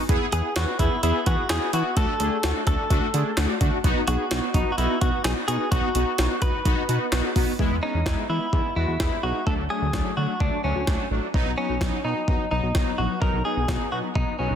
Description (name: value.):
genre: synth-pop.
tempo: 128 BPM.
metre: 4/4.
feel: straight.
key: B major.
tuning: A4 = 438 Hz.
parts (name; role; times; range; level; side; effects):
analog synth brass; accompaniment; 0.0-14.6 s; F#3 to B4; -27 LUFS; left 2 dB; chorus.
chorused synth bass; bass; 0.1-14.6 s; A1 to E3; -26 LUFS; equal; none.
jungle sampler-style drum kit; drums; 0.1-14.3 s; handclaps, hi-hat, kick drum, snare drum; -25 LUFS; equal; none.
direct-recorded clean electric guitar; melody; 0.3-14.6 s; C#4 to B4; -28 LUFS; equal; ping-pong delay.
room: light reverb.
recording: dense, heavily limited modern master.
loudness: -21 LUFS.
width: side -8 dB against mid.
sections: 0.0-7.6 A section; 7.6-14.6 B section.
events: none.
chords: 0.1 Eadd9; 2.0 D; 3.8 B; 7.6 E; 9.5 Dmaj7; 11.3 B.